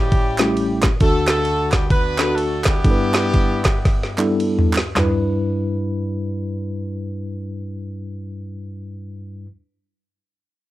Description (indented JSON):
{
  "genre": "uptempo gospel",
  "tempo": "101-135 BPM",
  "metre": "4/4",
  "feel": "swing 62% on 8ths",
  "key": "G major",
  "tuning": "A4 = 441 Hz",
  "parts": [
    { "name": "warm horn section", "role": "melody", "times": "0.0-4.4 s", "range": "G3 to B4", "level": "-23 LUFS", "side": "equal", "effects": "none" },
    { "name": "mellow tine electric piano", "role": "accompaniment", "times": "0.0-9.5 s", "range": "A1 to B4", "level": "-22 LUFS", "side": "left 1 dB", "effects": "medium stereo tremolo" },
    { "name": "garage drum kit", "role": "drums", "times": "0.1-5.1 s", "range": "handclaps, kick drum, ride cymbal, snare drum, toms", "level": "-18 LUFS", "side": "equal", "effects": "vintage 12-bit sampler grit" },
    { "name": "group handclap", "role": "percussion", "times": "0.4-5.3 s", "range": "none", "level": "-26 LUFS", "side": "right 3 dB", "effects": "none" }
  ],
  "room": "light reverb",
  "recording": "none",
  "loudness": "-17 LUFS",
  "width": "side -16 dB against mid",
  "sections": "0.0-5.0 A section; 5.0-9.7 B section",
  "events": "slowing down 1.0-5.0; drum fill 3.9-5.0",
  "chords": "0.0 A7; 1.0 D; 2.8 G6",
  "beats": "0.12 0.56 | 1.01 1.45 1.91 2.37 | 2.84 3.34 3.85 4.39 | 4.96 5.56 6.15 6.74 | 7.33 7.92 8.51 9.11"
}